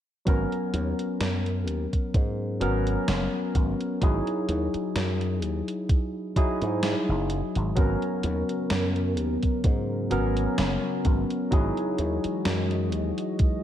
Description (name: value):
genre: vaporwave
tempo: 64 BPM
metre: 4/4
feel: swing 55% on 16ths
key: G# minor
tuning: A4 = 440 Hz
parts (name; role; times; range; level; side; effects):
- barky tine electric piano; accompaniment; 0.3-13.6 s; F#3 to A#4; -28 LUFS; left 1 dB; wide subtle chorus, tape echo
- slap bass with an envelope filter; bass; 0.3-13.1 s; F#1 to G#2; -28 LUFS; equal; tube saturation
- electronic kick drum; drums; 0.3-13.6 s; none; -23 LUFS; equal; none
- gated 80s digital drum machine; drums; 0.3-13.6 s; hi-hat, snare drum; -33 LUFS; equal; gated reverb, gated reverb snare
- warbly tape-like pad; sustained chords; 8.4-13.6 s; C#3 to D#5; -33 LUFS; right 1 dB; chorus, built-in reverb, vintage 12-bit sampler grit
room: light reverb, digital ambience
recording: dark, warm production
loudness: -24 LUFS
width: side -10 dB against mid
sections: 0.3-13.6 A section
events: none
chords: 0.3 G#m11; 4.0 Emaj9/G#; 7.8 G#m11; 11.5 Emaj9/G#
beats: | 0.27 1.21 2.15 3.08 | 4.02 4.96 5.90 6.83 | 7.77 8.71 9.65 10.58 | 11.52 12.46 13.40